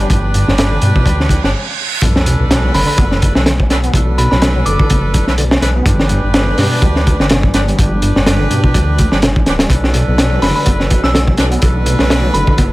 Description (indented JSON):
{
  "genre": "breakbeat, breaks",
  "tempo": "125 BPM",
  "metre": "4/4",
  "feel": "swing 56% on 16ths",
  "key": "B minor",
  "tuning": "A4 = 440 Hz",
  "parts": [
    { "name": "dark analog pad", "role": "sustained chords", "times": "0.0-12.7 s", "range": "G3 to D5", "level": "-26 LUFS", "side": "left 1 dB", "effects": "chorus, phaser, sidechain pumping" },
    { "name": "bright tonewheel organ", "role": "riff", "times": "0.0-12.6 s", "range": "G2 to B3", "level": "-19 LUFS", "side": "equal", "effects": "chorus vibrato, fast rotary speaker, tube saturation, tape echo" },
    { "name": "clear horn section", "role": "stabs", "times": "0.0-12.7 s", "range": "D4 to B4", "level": "-21 LUFS", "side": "right 2 dB", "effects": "tape echo" },
    { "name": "dark detuned saw bass", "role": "bass", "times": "0.0-12.7 s", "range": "D1 to G2", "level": "-16 LUFS", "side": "equal", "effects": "none" },
    { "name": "crunchy breakbeat drum kit", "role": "drums", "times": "0.1-12.7 s", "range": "hi-hat, kick drum, snare drum", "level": "-14 LUFS", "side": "equal", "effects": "none" },
    { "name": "reverse cymbal and sub drop", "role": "sound effects", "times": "1.3-3.9 s", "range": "none", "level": "-22 LUFS", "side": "right 2 dB", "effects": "none" },
    { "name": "glassy synth bell", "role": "melody", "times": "2.7-5.0, 10.4-12.5 s", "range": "B5 to E6", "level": "-21 LUFS", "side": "equal", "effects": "chorus, small speaker sound, vintage 12-bit sampler grit, tape echo" }
  ],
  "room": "small room ambience",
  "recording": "none",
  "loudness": "-10 LUFS",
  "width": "side -18 dB against mid",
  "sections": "0.0-2.0 A section; 2.0-12.7 B section",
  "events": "reverse cymbal 1.3-2.0; stop 1.5-2.0; drop 2.0-12.7; impact 2.0-3.9",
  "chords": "0.0 G; 2.0 Bm7; 5.9 G; 9.7 Bm7",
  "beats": "| 0.10 0.58 1.06 1.54 | 2.02 2.50 2.98 3.46 | 3.94 4.42 4.90 5.38 | 5.86 6.34 6.82 7.30 | 7.78 8.26 8.74 9.22 | 9.70 10.18 10.66 11.14 | 11.62 12.10 12.58"
}